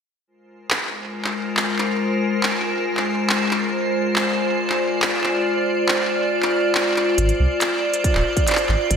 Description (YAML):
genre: IDM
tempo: 139 BPM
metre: 4/4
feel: straight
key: Ab lydian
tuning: A4 = 442 Hz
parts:
  - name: icy glass pad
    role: sustained chords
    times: 1.0-9.0 s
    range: Ab3 to D5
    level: -20 LUFS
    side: equal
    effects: chorus, built-in reverb
  - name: industrial drum kit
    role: drums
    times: 0.7-9.0 s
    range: handclaps, hi-hat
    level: -23 LUFS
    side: equal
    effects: ping-pong delay
  - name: warm sub bass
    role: bass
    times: 7.2-9.0 s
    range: D1 to C2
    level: -19 LUFS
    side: equal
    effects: tube saturation
  - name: electronic kick drum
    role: drums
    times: 8.0-9.0 s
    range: none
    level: -21 LUFS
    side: equal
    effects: distortion
room: wet lush hall reverb, RT60 1.6 s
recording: dreamy mix soaked in reverb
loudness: -18 LUFS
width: side -7 dB against mid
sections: 0.3-9.0 A section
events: none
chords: 0.3 Ab69; 3.7 Fm6/Ab; 7.2 Dm7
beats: | 0.27 0.70 1.14 1.57 | 2.00 2.43 2.86 3.29 | 3.73 4.16 4.59 5.02 | 5.45 5.88 6.32 6.75 | 7.18 7.61 8.04 8.47 | 8.91